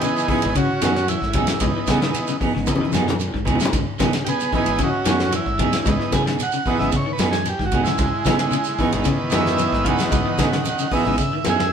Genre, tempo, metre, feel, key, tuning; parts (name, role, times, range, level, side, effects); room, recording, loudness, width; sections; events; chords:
afrobeat; 113 BPM; 4/4; straight; C# minor; A4 = 441 Hz
combo organ; accompaniment; 0.0-11.7 s; D#3 to F#5; -22 LUFS; right 2 dB
semi-hollow electric guitar; arpeggios; 0.0-11.7 s; C#3 to G#3; -28 LUFS; left 5 dB
soft brush drum kit; drums; 0.0-11.7 s; hi-hat, kick drum, ride cymbal, snare drum; -24 LUFS; left 1 dB
shekere; percussion; 0.0-11.7 s; -33 LUFS; right 4 dB
clean electric guitar; stabs; 0.3-11.6 s; E3 to G#4; -25 LUFS; right 4 dB; tremolo
congas; percussion; 0.3-11.7 s; -28 LUFS; left 4 dB
fingered electric bass; bass; 0.4-11.7 s; G#1 to C#3; -26 LUFS; equal
moderate stone room reverb, RT60 1.2 s; band playing live in one room; -18 LUFS; side -7 dB against mid
0.0-11.7 A section
transistor combo organ solo 0.0-11.7; drum fill 2.7-3.7
0.0 C#m9